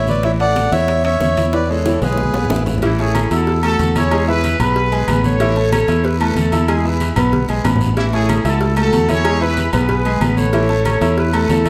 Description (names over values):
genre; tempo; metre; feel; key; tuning
latin, salsa; 187 BPM; 4/4; straight; A major; A4 = 440 Hz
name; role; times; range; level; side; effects
accordion; melody; 0.0-2.6 s; G#4 to F#5; -20 LUFS; equal; none
bright concert grand piano; accompaniment; 0.0-11.7 s; E3 to E6; -23 LUFS; equal; none
fingered electric bass; bass; 0.0-11.7 s; A1 to E2; -20 LUFS; equal; none
bongos and cowbell; percussion; 0.1-11.7 s; none; -30 LUFS; equal; none
congas; percussion; 0.1-11.7 s; none; -27 LUFS; equal; none
guiro; percussion; 0.1-11.7 s; none; -37 LUFS; equal; none
timbales and agogo bells; percussion; 0.2-11.7 s; none; -28 LUFS; equal; none
warm horn section; melody; 2.8-11.7 s; C#4 to C#5; -22 LUFS; equal; none
room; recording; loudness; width
wet large studio reverb, RT60 1.4 s; none; -16 LUFS; mono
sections
0.0-2.8 A section; 2.8-11.7 B section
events
drum fill 1.5-2.8, 7.3-8.0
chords
0.2 A; 1.5 E; 2.8 A; 4.1 E; 5.4 A; 6.7 E; 8.0 A; 9.2 E; 10.5 A